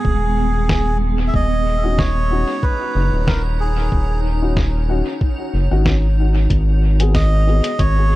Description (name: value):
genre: ambient dub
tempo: 93 BPM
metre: 4/4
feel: swing 54% on 16ths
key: unclear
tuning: A4 = 440 Hz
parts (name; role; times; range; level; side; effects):
- melodica; melody; 0.0-8.2 s; G#4 to E5; -23 LUFS; right 2 dB; dub echo
- granular cloud pad; sustained chords; 0.0-8.2 s; G#3 to A#5; -27 LUFS; right 1 dB; built-in reverb
- round analog bass; bass; 0.0-8.2 s; D#1 to G#1; -16 LUFS; equal; none
- electronic kick drum; drums; 0.0-7.9 s; none; -19 LUFS; equal; none
- lo-fi sampler-style drum kit; drums; 0.7-7.9 s; hi-hat, snare drum; -26 LUFS; equal; dub echo
- dark upright piano; stabs; 1.8-7.7 s; B3 to G#4; -26 LUFS; left 5 dB; dub echo
room: little or no reverb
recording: echo-heavy mix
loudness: -15 LUFS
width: side -17 dB against mid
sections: 0.0-8.2 A section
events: none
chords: 0.0 G#m7; 1.3 D#m7; 6.5 G#m7